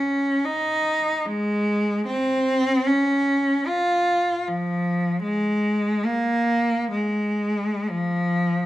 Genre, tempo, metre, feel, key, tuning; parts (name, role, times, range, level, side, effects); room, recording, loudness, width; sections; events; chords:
classical, free, expressive piece for unaccompanied cello; free time; A4 = 440 Hz
clear cello; solo; 0.0-8.7 s; F3 to F4; -20 LUFS; equal
moderate recital hall reverb, RT60 1.3 s; close, detailed microphones; -20 LUFS; side -15 dB against mid
0.0-8.7 A section